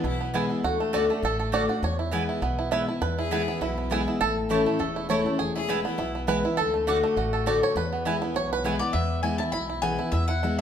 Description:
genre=bluegrass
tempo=202 BPM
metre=4/4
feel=swing 54% on 8ths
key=E mixolydian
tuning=A4 = 440 Hz
part: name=bluegrass banjo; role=melody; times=0.0-10.6 s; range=A3 to E5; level=-28 LUFS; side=right 4 dB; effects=none
part: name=clear fiddle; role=second line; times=0.0-0.3, 3.2-6.2 s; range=E4 to G#4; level=-35 LUFS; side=left 6 dB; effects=none
part: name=picked steel-string acoustic guitar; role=accompaniment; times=0.0-10.6 s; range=E2 to F#4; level=-27 LUFS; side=left 4 dB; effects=none
part: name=upright bass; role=bass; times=0.0-10.6 s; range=E1 to E2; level=-32 LUFS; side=equal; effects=none
part: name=mandolin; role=stabs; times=0.3-8.7 s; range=A3 to A5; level=-33 LUFS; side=right 4 dB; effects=none
part: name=mandolin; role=melody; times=8.8-10.6 s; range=D5 to B5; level=-29 LUFS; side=left 4 dB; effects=none
room=wet large studio reverb, RT60 1.4 s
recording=band playing live in one room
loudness=-23 LUFS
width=side -8 dB against mid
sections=0.0-8.9 A section; 8.9-10.6 B section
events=five-string banjo solo 0.0-8.9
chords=0.0 E; 0.6 D; 1.8 E; 4.2 A; 5.4 E; 6.6 D; 7.8 E

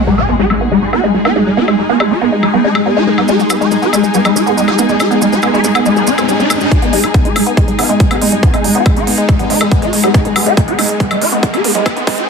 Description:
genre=psychedelic trance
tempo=140 BPM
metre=4/4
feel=straight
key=unclear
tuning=A4 = 440 Hz
part: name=swarming rave lead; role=melody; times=0.0-12.2 s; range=G#3 to G#4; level=-16 LUFS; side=equal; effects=chorus, phaser, sidechain pumping, dub echo
part: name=evolving wavetable pad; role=sustained chords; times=0.7-12.3 s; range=G#3 to D#4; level=-21 LUFS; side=equal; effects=phaser, built-in reverb, sidechain pumping
part: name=impact and riser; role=sound effects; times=0.0-12.3 s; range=none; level=-22 LUFS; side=equal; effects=none
part: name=muted studio string section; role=texture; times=0.0-12.3 s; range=C#4 to G#5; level=-22 LUFS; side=left 4 dB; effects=sidechain pumping
part: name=woody wave-folded pluck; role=riff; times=0.1-12.3 s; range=G#3 to G#4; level=-15 LUFS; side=moving between left 7 dB and right 7 dB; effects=chorus, auto-pan, sidechain pumping, tape echo
part: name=electronic woodblock and hi-hat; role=drums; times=0.2-12.3 s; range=none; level=-18 LUFS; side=equal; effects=low-pass filter on hats, small room reverb, low-pass filter on cymbals, low-pass filter on perc, low-pass filter on snare
part: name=maracas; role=percussion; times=3.3-6.7 s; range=none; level=-22 LUFS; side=right 5 dB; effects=none
part: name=electronic kick drum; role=drums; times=6.7-12.2 s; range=none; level=-12 LUFS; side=equal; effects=small room reverb
room=light reverb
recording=dense, heavily limited modern master, high-pass filter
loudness=-10 LUFS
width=side -5 dB against mid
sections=0.0-6.7 A section; 6.7-12.3 B section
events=impact 0.0-1.6; filter sweep on drum 0.0-6.7; riser 4.8-6.7, 6.7-12.3; build-up 6.7-12.3; filter sweep on synth arpeggio sound 6.7-12.3; filter sweep on digital synth lead 6.7-12.3; filter sweep 6.7-12.3; drum fill 10.1-12.3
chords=0.0 G#5

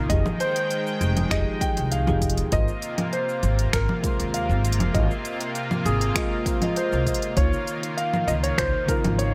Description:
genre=sunset chillout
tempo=99 BPM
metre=4/4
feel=straight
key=Ab major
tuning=A4 = 440 Hz
part: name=dark concert grand piano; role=melody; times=0.0-9.3 s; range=Ab4 to G5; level=-30 LUFS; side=equal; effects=digital delay
part: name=soft electric-piano-like synth keys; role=accompaniment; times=0.0-9.3 s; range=Db3 to F5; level=-32 LUFS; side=equal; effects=chorus, digital delay
part: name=lush unison pad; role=sustained chords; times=0.0-9.3 s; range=C3 to G5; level=-32 LUFS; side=equal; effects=chorus
part: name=upright bass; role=bass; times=0.0-9.3 s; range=F1 to Eb2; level=-26 LUFS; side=equal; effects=none
part: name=deep house drum kit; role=drums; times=0.1-9.3 s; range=cabasa, congas, finger snaps, hi-hat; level=-31 LUFS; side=equal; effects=none
part: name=electronic kick drum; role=drums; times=0.1-9.0 s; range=none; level=-30 LUFS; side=equal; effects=none
room=light reverb, digital ambience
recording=none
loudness=-24 LUFS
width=mono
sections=0.0-9.3 A section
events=none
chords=0.1 Fm9; 2.5 Ab69; 7.4 Db69

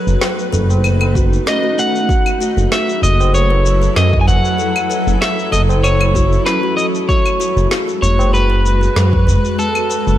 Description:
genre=organic downtempo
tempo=96 BPM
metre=4/4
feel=swing 54% on 16ths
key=F# dorian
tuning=A4 = 439 Hz
part: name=electric slide guitar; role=melody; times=0.0-10.2 s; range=A4 to G#5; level=-19 LUFS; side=left 1 dB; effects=ping-pong delay
part: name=granular cloud pad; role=sustained chords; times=0.0-10.2 s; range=F#3 to B4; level=-21 LUFS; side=equal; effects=built-in reverb, sidechain pumping
part: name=kalimba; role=arpeggios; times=0.0-10.2 s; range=C#4 to B4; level=-22 LUFS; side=equal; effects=digital delay
part: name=smooth synth bass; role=bass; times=0.1-10.2 s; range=F#1 to F#2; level=-14 LUFS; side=equal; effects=none
part: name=electronic shaker, snare drum and claves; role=drums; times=0.1-10.2 s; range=none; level=-23 LUFS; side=left 1 dB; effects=overdrive
part: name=tabla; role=percussion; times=0.2-9.4 s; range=none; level=-22 LUFS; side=left 1 dB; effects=none
part: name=electronic kick drum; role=drums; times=1.2-9.2 s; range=none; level=-16 LUFS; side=equal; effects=overdrive
room=light reverb, digital ambience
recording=none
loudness=-12 LUFS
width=side -12 dB against mid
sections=0.0-10.2 A section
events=none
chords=0.0 B7/F#; 2.1 F#m7; 7.1 G#m7/F#; 9.6 B7

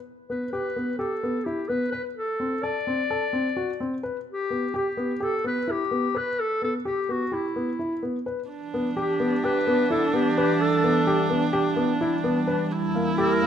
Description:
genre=contemporary instrumental, chamber music in an uneven meter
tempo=256 BPM (eighths)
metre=9/8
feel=straight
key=E minor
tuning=A4 = 441 Hz
part: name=clear clarinet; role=melody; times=0.3-13.5 s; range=E4 to D5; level=-27 LUFS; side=left 2 dB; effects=none
part: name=dark grand piano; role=arpeggios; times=0.3-13.5 s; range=Bb3 to B4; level=-27 LUFS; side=left 1 dB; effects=none
part: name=warm viola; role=second line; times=8.5-13.5 s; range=D4 to E4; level=-26 LUFS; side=right 5 dB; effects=none
part: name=glassy FM pad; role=sustained chords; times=8.8-13.5 s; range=E2 to A5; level=-28 LUFS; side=equal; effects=ensemble chorus, built-in reverb
room=light reverb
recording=close, detailed microphones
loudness=-23 LUFS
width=side -9 dB against mid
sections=0.0-8.5 A section; 8.5-13.5 B section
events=none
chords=0.0 Em (rootless); 2.2 D7(no3); 4.3 Em; 8.5 Em11; 12.7 A7b9/E

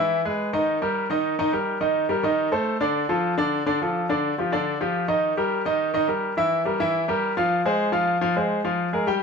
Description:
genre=latin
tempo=211 BPM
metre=4/4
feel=straight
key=unclear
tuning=A4 = 440 Hz
part: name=bright grand piano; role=solo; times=0.0-9.2 s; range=D3 to G5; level=-21 LUFS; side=equal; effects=none
room=wet stone room reverb, RT60 1.1 s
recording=band playing live in one room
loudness=-21 LUFS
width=side -5 dB against mid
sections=0.0-9.2 A section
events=none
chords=0.0 E; 0.7 Eb; 2.4 Cm69; 3.0 Dm; 4.1 G5; 5.2 Eb; 6.4 Edim; 7.5 Fm; 8.6 Bb5

